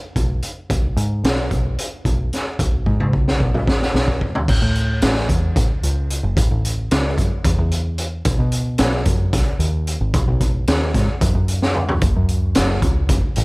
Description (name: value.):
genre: psychedelic rock.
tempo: 223 BPM (eighths).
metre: 7/8.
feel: straight.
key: A lydian.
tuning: A4 = 441 Hz.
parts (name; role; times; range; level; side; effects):
overdriven picked electric bass; bass; 0.2-13.4 s; F#1 to B2; -20 LUFS; equal; none.
raw garage drum kit; drums; 0.2-13.4 s; crash cymbal, hi-hat, kick drum, snare drum, toms; -19 LUFS; equal; none.
room: little or no reverb.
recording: none.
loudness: -16 LUFS.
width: side -27 dB against mid.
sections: 0.0-4.5 A section; 4.5-13.4 B section.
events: drum fill 2.9-4.5, 11.6-12.0.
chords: none.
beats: 0.16 0.43 | 0.70 0.97 1.24 1.51 1.78 2.06 2.33 | 2.60 2.87 3.13 3.40 3.67 3.94 4.21 | 4.48 4.75 5.02 5.29 5.56 5.83 6.10 | 6.37 6.64 6.91 7.18 7.45 7.71 7.98 | 8.25 8.52 8.79 9.06 9.33 9.60 9.87 | 10.14 10.40 10.67 10.94 11.21 11.48 11.75 | 12.02 12.29 12.55 12.82 13.09 13.36.